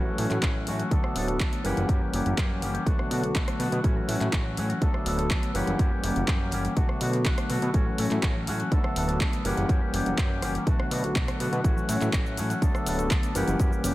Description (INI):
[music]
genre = filtered disco house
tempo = 123 BPM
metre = 4/4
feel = straight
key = A major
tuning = A4 = 440 Hz
[part]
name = overdriven tine electric piano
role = accompaniment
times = 0.0-13.9 s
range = D3 to F#5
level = -30 LUFS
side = equal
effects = phaser, sidechain pumping, low-pass filter
[part]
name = electric guitar with an envelope filter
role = riff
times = 0.0-13.9 s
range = E3 to A4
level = -33 LUFS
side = left 1 dB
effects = sidechain pumping, low-pass filter
[part]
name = fat analog bass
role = bass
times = 0.0-13.9 s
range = D1 to B2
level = -30 LUFS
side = equal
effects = sidechain pumping, low-pass filter
[part]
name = house drum kit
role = drums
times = 0.2-13.9 s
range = cabasa, handclaps, hi-hat, rim click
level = -34 LUFS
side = equal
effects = none
[part]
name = electronic kick drum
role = drums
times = 0.4-13.7 s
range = none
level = -26 LUFS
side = equal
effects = none
[part]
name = maracas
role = percussion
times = 3.8-13.9 s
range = none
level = -52 LUFS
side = right 4 dB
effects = none
[sound]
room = little or no reverb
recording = none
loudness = -23 LUFS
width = side -17 dB against mid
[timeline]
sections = 0.0-13.9 A section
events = none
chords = 0.0 A6; 0.9 D6; 1.6 F#7b9; 2.9 Bm7; 3.8 A6; 4.8 D6; 5.5 F#7b9; 6.8 Bm7; 7.7 A6; 8.7 D6; 9.5 F#7b9; 10.7 Bm7; 11.6 A6; 12.6 D6; 13.4 F#7b9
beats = 0.43 0.92 1.40 | 1.89 2.38 2.87 3.35 | 3.84 4.33 4.82 5.30 | 5.79 6.28 6.77 7.26 | 7.74 8.23 8.72 9.21 | 9.70 10.18 10.67 11.16 | 11.65 12.13 12.62 13.11 | 13.60